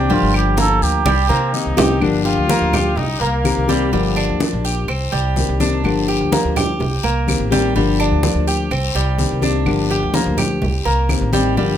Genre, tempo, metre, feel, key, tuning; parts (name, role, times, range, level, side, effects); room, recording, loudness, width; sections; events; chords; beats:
latin, Cuban son and guajira; 125 BPM; 4/4; straight; G minor; A4 = 443 Hz
trumpet with cup mute; melody; 0.0-1.8 s; F4 to A4; -20 LUFS; right 5 dB
nylon-string guitar; accompaniment; 0.0-11.8 s; D3 to G4; -19 LUFS; left 5 dB
Cuban tres; arpeggios; 0.0-11.8 s; G3 to G4; -21 LUFS; right 4 dB
upright bass; bass; 0.0-11.8 s; G1 to C3; -20 LUFS; equal
congas; percussion; 0.1-11.8 s; -23 LUFS; right 1 dB
guiro; percussion; 0.1-11.8 s; -29 LUFS; left 7 dB
claves; percussion; 0.3-11.3 s; -29 LUFS; right 2 dB
warm trumpet; second line; 1.3-4.2 s; Bb3 to F4; -23 LUFS; left 2 dB; slapback echo
light reverb; close, detailed microphones; -15 LUFS; side -10 dB against mid
0.0-2.0 A section; 2.0-11.8 B section
drum fill 1.1-2.0
0.1 Gm7; 1.1 Cm7; 2.0 Gm7; 3.0 Cm7; 3.9 Gm7; 4.9 Cm7; 5.8 Gm7; 6.8 Cm7; 7.8 Gm7; 8.7 Cm7; 9.7 Gm7; 10.6 Cm7
| 0.10 0.58 1.06 1.54 | 2.02 2.49 2.97 3.45 | 3.93 4.41 4.89 5.37 | 5.84 6.32 6.80 7.28 | 7.76 8.23 8.71 9.19 | 9.67 10.14 10.62 11.10 | 11.57